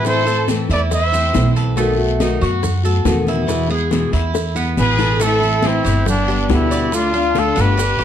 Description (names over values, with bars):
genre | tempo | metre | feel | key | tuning
latin, Cuban son and guajira | 140 BPM | 4/4 | straight | A minor | A4 = 435 Hz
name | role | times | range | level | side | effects
breathy trumpet | melody | 0.0-1.5, 4.8-8.0 s | D4 to E5 | -19 LUFS | right 1 dB | none
clear studio violin section | second line | 0.0-1.5, 4.8-8.0 s | B3 to C5 | -25 LUFS | equal | none
nylon-string guitar | accompaniment | 0.0-8.0 s | B2 to G4 | -22 LUFS | left 4 dB | none
Cuban tres | arpeggios | 0.0-8.0 s | A3 to D5 | -23 LUFS | right 1 dB | none
upright bass | bass | 0.0-8.0 s | G1 to A2 | -19 LUFS | right 1 dB | none
bongos | percussion | 0.0-8.0 s | none | -27 LUFS | left 6 dB | none
guiro | percussion | 0.0-8.0 s | none | -33 LUFS | left 7 dB | none
congas | percussion | 0.1-8.0 s | none | -27 LUFS | equal | none
maracas | percussion | 0.1-8.0 s | none | -33 LUFS | right 6 dB | none
room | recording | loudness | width
light reverb | dark, warm production | -14 LUFS | side -9 dB against mid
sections
0.0-5.2 A section; 5.2-8.0 B section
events
drum fill 4.3-5.2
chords
0.1 Am; 1.8 B7; 3.5 E; 5.2 Am; 6.1 G; 6.9 Dm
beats
| 0.05 0.48 0.91 1.34 | 1.77 2.20 2.63 3.06 | 3.49 3.92 4.35 4.78 | 5.21 5.64 6.07 6.50 | 6.92 7.35 7.78